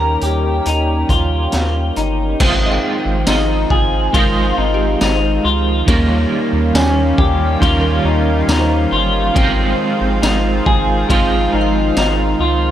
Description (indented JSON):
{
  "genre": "dream pop",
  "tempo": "69 BPM",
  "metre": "4/4",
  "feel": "straight",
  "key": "Ab major",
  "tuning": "A4 = 439 Hz",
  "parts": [
    { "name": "lush unison pad", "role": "sustained chords", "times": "0.0-12.7 s", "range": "Eb3 to G4", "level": "-21 LUFS", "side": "right 1 dB", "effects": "chorus" },
    { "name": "clean electric guitar", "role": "arpeggios", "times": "0.0-12.7 s", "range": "Bb3 to Bb4", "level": "-18 LUFS", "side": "left 2 dB", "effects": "lush chorus, digital delay" },
    { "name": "round analog bass", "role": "bass", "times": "0.0-12.7 s", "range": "G1 to Eb2", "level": "-18 LUFS", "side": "equal", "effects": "none" },
    { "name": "raw garage drum kit", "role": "drums", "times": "0.2-12.2 s", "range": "crash cymbal, hi-hat, kick drum, ride cymbal, snare drum, tambourine", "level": "-19 LUFS", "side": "equal", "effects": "none" },
    { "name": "electric guitar at the edge of break-up", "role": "accompaniment", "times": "2.4-12.7 s", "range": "Eb3 to Eb5", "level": "-21 LUFS", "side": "right 4 dB", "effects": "tremolo, analog chorus" },
    { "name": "glassy synth bell", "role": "texture", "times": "2.7-12.7 s", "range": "G4 to G5", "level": "-30 LUFS", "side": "right 1 dB", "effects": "none" }
  ],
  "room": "light reverb, small room ambience",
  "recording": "none",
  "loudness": "-13 LUFS",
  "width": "side -11 dB against mid",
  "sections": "0.0-2.4 A section; 2.4-12.7 B section",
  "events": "none",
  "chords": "0.0 Eb7; 2.4 Ab6; 5.9 Eb9; 9.4 Ab6"
}